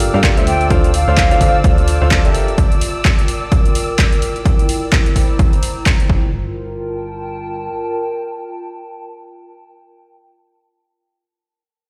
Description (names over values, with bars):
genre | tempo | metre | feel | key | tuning
piano house | 128 BPM | 4/4 | swing 59% on 16ths | G dorian | A4 = 439 Hz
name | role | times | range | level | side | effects
muted studio violin section | sustained chords | 0.0-6.1 s | D5 to E6 | -29 LUFS | equal | sidechain pumping
clear grand piano | riff | 0.0-2.6 s | D4 to F5 | -22 LUFS | equal | vintage 12-bit sampler grit, sidechain pumping, dub echo
plucky analog bass | bass | 0.0-2.5, 6.1-7.7 s | G1 to G2 | -21 LUFS | equal | sidechain pumping
punchy analog drum machine | drums | 0.0-6.1 s | handclaps, hi-hat | -24 LUFS | equal | overdrive
warbly tape-like pad | texture | 0.0-9.8 s | Bb3 to Bb5 | -27 LUFS | equal | chorus, built-in reverb, sidechain pumping
electronic kick drum | drums | 0.2-6.2 s | none | -17 LUFS | equal | overdrive
silver concert flute | melody | 0.5-1.6 s | F5 to G5 | -22 LUFS | equal | vintage 12-bit sampler grit, dub echo
room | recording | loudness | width
light reverb, studio reverb | played on a big sound system in a bare room, stone room reverb | -15 LUFS | mono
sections
0.0-6.3 A section; 6.3-10.1 B section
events
filter sweep on analog synth bass 0.0-6.3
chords
0.0 Gm9; 4.2 C7; 6.1 Gm7